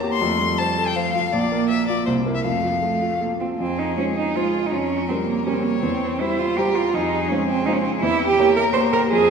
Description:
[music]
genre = quick classical-period movement for piano trio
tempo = 162 BPM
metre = 3/4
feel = rubato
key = F major, F minor from 3.6 s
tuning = A4 = 440 Hz
[part]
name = rich cello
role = second line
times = 0.0-9.3 s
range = F3 to C5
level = -21 LUFS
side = right 4 dB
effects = none
[part]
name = clear baby grand piano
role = accompaniment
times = 0.0-9.3 s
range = Bb1 to C#5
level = -24 LUFS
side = left 1 dB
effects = none
[part]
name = clear violin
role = melody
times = 0.1-9.3 s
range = G4 to C6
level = -26 LUFS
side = left 6 dB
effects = none
[sound]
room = wet scoring stage reverb, RT60 1.9 s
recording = heard from further back in the room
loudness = -19 LUFS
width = side -6 dB against mid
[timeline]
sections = 0.0-3.6 A section; 3.6-9.3 B section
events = none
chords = 0.2 F; 1.3 Bb; 2.1 C7; 2.5 F; 3.6 Fm; 4.7 Gm7b5/F; 5.8 C/E; 6.9 Fm; 8.0 Edim7

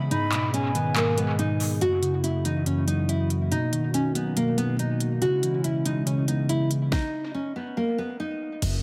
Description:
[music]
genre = hip hop, trap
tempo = 141 BPM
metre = 4/4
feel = half-time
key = C# dorian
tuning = A4 = 438 Hz
[part]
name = mellow tine electric piano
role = accompaniment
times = 0.0-8.8 s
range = F#2 to B3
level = -28 LUFS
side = equal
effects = none
[part]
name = hollow soft pad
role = sustained chords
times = 0.0-8.8 s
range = B2 to B5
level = -37 LUFS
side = equal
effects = chorus
[part]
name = nylon-string guitar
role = melody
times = 0.1-8.6 s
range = A#3 to F#4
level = -30 LUFS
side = equal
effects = dub echo
[part]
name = breathy mellow silver concert flute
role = second line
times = 0.1-1.3 s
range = G#5 to B5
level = -34 LUFS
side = equal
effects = dub echo
[part]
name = trap drum kit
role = drums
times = 0.1-8.7 s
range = crash cymbal, handclaps, hi-hat, kick drum, snare drum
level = -34 LUFS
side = equal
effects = dub echo
[part]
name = distorted 808-style bass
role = bass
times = 8.6-8.8 s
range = F#1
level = -29 LUFS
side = equal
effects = distortion
[sound]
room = moderate echo chamber reverb, RT60 1.5 s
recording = echo-heavy mix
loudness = -25 LUFS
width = mono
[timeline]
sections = 0.0-1.8 A section; 1.8-8.6 B section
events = kick muted 0.1-1.8; stop 6.9-8.6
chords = 0.1 G#m; 1.8 F#7; 3.5 Bmaj7; 5.2 C#m7; 6.9 N.C.

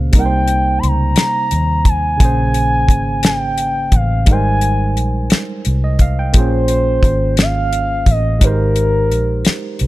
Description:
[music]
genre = slow six-eight R&B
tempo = 58 BPM (dotted quarters)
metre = 6/8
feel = straight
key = Bb dorian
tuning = A4 = 440 Hz
[part]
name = barky tine electric piano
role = accompaniment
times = 0.0-9.9 s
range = Bb2 to G5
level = -22 LUFS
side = right 3 dB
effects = overdrive
[part]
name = vintage muted fingered electric bass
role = bass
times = 0.0-9.9 s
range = Ab1 to Eb2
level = -17 LUFS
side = equal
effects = none
[part]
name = damped 70s drum kit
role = drums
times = 0.1-9.9 s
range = hi-hat, kick drum, snare drum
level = -13 LUFS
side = equal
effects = none
[part]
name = gliding portamento lead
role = melody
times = 0.2-9.8 s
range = Bb4 to C6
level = -18 LUFS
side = equal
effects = chorus
[sound]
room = small room ambience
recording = none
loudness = -12 LUFS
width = side -17 dB against mid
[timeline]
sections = 0.0-9.9 A section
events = none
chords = 0.1 Cm7; 2.2 Bbm9; 4.3 Abmaj7; 6.3 Bbm9; 8.4 Abmaj9

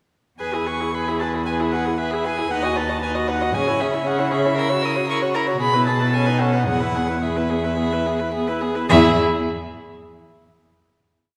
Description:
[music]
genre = quick classical-period movement for string quartet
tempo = 107-119 BPM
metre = 4/4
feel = rubato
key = E major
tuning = A4 = 440 Hz
[part]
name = rich violin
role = melody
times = 0.4-9.2 s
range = E5 to E6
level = -27 LUFS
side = equal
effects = none
[part]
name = warm violin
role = second line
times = 0.4-9.2 s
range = G#4 to D#5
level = -27 LUFS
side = equal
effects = none
[part]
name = rich viola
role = accompaniment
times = 0.4-9.2 s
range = B3 to G#4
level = -27 LUFS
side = equal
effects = none
[part]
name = rich cello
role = bass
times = 0.4-9.2 s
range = D#2 to C#3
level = -26 LUFS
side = equal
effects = none
[sound]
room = wet concert hall reverb, RT60 1.8 s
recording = recorded in a church or concert hall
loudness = -21 LUFS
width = mono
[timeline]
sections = 0.4-8.9 A section; 8.9-11.0 final chord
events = none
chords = 0.4 E; 2.5 B/D#; 3.6 C#m; 4.6 F#7/C#; 5.6 E/B; 6.1 B9; 6.7 E; 8.9 N.C.

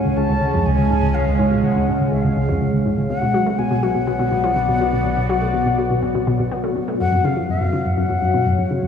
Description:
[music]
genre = ambient, sequencer-driven space music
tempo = 123 BPM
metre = 4/4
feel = straight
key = unclear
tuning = A4 = 438 Hz
[part]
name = breathy mellow concert flute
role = melody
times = 0.0-8.7 s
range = E#5 to A5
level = -23 LUFS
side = left 3 dB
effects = tape echo
[part]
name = sweeping resonant pad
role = sustained chords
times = 0.0-8.9 s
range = G#3 to D5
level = -22 LUFS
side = equal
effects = chorus
[part]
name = analog pluck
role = riff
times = 0.0-8.9 s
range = C#2 to B3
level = -20 LUFS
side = equal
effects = chorus, cassette tape, tape echo
[part]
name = analog drone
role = bass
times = 0.0-8.9 s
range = F#1 to C#2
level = -25 LUFS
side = equal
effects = chorus
[part]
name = pulsing gated texture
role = texture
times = 7.0-8.9 s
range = none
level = barely audible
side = none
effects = none
[sound]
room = wet cathedral reverb, RT60 4.9 s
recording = in a vast, echoing space, cassette tape, small room reverb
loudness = -16 LUFS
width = side -7 dB against mid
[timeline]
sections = 0.0-7.0 A section; 7.0-8.9 B section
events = none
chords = 0.0 C#; 3.1 Bm; 7.0 F#5

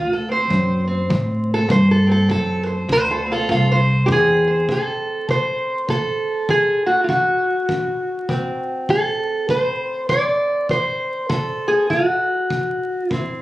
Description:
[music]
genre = acoustic country blues, solo or duo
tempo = 100 BPM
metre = 4/4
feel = swing 62% on 8ths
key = D mixolydian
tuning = A4 = 438 Hz
[part]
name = fingerpicked steel-string acoustic guitar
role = melody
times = 0.0-13.4 s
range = D3 to D5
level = -18 LUFS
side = equal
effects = plate reverb
[part]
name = upright bass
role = bass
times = 0.0-4.7 s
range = C2 to A2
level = -18 LUFS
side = equal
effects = none
[part]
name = kick drum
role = drums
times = 0.5-13.3 s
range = none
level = -28 LUFS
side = equal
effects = none
[sound]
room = moderate studio reverb, RT60 0.6 s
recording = recorded on a phone in the room, studio ambience, vinyl crackle, compression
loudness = -17 LUFS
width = side -16 dB against mid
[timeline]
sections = 0.0-4.7 A section; 4.7-13.4 B section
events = steel-string acoustic guitar solo 0.0-4.7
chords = 0.0 D7

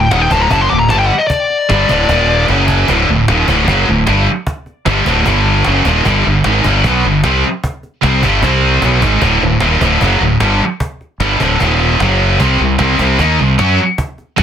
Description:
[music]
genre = heavy metal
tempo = 151 BPM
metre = 4/4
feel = straight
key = D phrygian dominant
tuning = A4 = 442 Hz
[part]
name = high-gain lead guitar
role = melody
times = 0.0-2.4 s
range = D5 to D6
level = -15 LUFS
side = left 4 dB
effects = distortion, tape echo
[part]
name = scooped high-gain guitar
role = riff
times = 0.0-14.4 s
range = D2 to F#4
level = -12 LUFS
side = equal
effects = distortion
[part]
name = growling fingered electric bass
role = bass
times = 0.0-14.4 s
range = D1 to F#2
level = -15 LUFS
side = equal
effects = overdrive
[part]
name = cajon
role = drums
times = 0.1-14.4 s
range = none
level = -21 LUFS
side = right 1 dB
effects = none
[sound]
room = light reverb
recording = dense, heavily limited modern master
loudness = -10 LUFS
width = side -9 dB against mid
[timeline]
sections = 0.0-2.9 A section; 2.9-14.4 B section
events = lead electric guitar solo 0.0-2.9; drum fill 2.5-2.9; kick and snare drop out 8.8-9.2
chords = 0.0 D; 2.1 Eb5; 2.5 F#5; 2.9 D; 5.3 G5; 5.7 Ebm7; 6.1 G5; 8.4 C5; 8.8 G#m7; 9.2 D; 11.6 Eb5; 12.0 F#5; 12.4 C5

